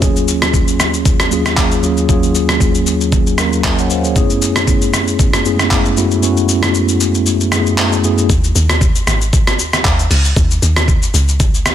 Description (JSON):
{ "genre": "amapiano", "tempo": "116 BPM", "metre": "4/4", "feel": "swing 55% on 16ths", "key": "unclear", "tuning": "A4 = 440 Hz", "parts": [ { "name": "mellow tine electric piano", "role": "accompaniment", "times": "0.0-8.3 s", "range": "Eb2 to Ab5", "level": "-14 LUFS", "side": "equal", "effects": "medium stereo tremolo" }, { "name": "dusty soul sampler-style drum kit", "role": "drums", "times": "0.0-11.7 s", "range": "handclaps, hi-hat, kick drum, rim click, shaker", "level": "-14 LUFS", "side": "equal", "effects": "overdrive" }, { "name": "deep log drum bass", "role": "bass", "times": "8.3-11.7 s", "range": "Ab1 to Eb2", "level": "-15 LUFS", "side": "equal", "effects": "none" } ], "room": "light reverb, digital ambience", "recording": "dense, heavily limited modern master", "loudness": "-11 LUFS", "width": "side -10 dB against mid", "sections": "0.0-8.3 A section; 8.3-11.7 B section", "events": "kick muted 6.2-8.3; drop 8.3-11.7", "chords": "0.0 Ebm11; 4.2 Gbm11; 8.3 Eb7sus4", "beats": "| 0.02 0.54 1.05 1.57 | 2.09 2.61 3.12 3.64 | 4.16 4.67 5.19 5.71 | 6.23 6.74 7.26 7.78 | 8.30 8.81 9.33 9.85 | 10.37 10.88 11.40" }